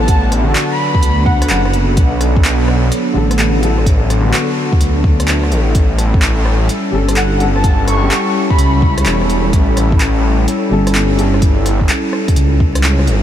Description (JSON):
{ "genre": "future garage", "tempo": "127 BPM", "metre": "4/4", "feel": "swing 66% on 16ths", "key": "unclear", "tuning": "A4 = 437 Hz", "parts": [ { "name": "airy dreamy lead", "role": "melody", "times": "0.0-1.6, 7.2-9.0 s", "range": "F#5 to C#6", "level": "-22 LUFS", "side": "equal", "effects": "chorus, tape echo" }, { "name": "warbly tape-like pad", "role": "sustained chords", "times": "0.0-13.2 s", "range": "F#3 to A4", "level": "-18 LUFS", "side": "equal", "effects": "chorus, built-in reverb, sidechain pumping" }, { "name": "swelling detuned saw bass", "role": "bass", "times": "0.0-13.2 s", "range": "E1 to D2", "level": "-14 LUFS", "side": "equal", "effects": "sidechain pumping" }, { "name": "deep house drum kit", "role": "drums", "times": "0.0-13.2 s", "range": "handclaps, hi-hat, rim click", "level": "-21 LUFS", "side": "equal", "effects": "none" }, { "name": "electronic kick drum", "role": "drums", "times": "0.1-12.7 s", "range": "none", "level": "-13 LUFS", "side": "equal", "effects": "none" }, { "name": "felt-muted upright piano", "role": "accompaniment", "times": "0.4-11.3 s", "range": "D3 to A4", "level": "-23 LUFS", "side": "left 3 dB", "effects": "sidechain pumping, ping-pong delay" } ], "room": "light reverb, digital ambience", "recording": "vinyl crackle", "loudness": "-11 LUFS", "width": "side -10 dB against mid", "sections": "0.0-13.2 A section", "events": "none", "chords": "0.0 Bm7; 5.8 A7" }